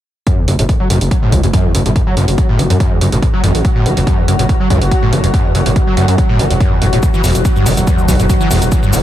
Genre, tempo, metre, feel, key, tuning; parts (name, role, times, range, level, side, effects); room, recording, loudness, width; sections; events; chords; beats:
driving peak-time techno; 142 BPM; 4/4; straight; A4 = 444 Hz
screaming distorted acid line; riff; 0.3-9.0 s; E1 to F#3; -16 LUFS; equal; distortion, wide subtle chorus, cassette tape, sidechain pumping, tape echo
deep dark ambient pad; drone; 1.0-9.0 s; F#3 to F#4; -21 LUFS; right 1 dB; chorus, built-in reverb, sidechain pumping
electronic hi-hat and shaker; drums; 0.3-9.0 s; -23 LUFS; right 2 dB
electronic kick drum; drums; 0.3-8.8 s; -14 LUFS; equal
granular cloud pad; texture; 2.3-9.0 s; E4 to F#5; -24 LUFS; left 1 dB; built-in reverb, sidechain pumping
gritty driven synth bass; bass; 0.5-9.0 s; E1 to F#2; -14 LUFS; equal; sidechain pumping
light reverb, digital ambience; -10 LUFS; side -12 dB against mid
0.3-9.0 A section
fade-in on ambient pad 0.3-9.0; filter sweep on acid bass 0.3-9.0
0.3 F#m; 7.0 Em
| 0.27 0.69 1.11 1.53 | 1.96 2.38 2.80 3.23 | 3.65 4.07 4.49 4.92 | 5.34 5.76 6.18 6.61 | 7.03 7.45 7.87 8.30 | 8.72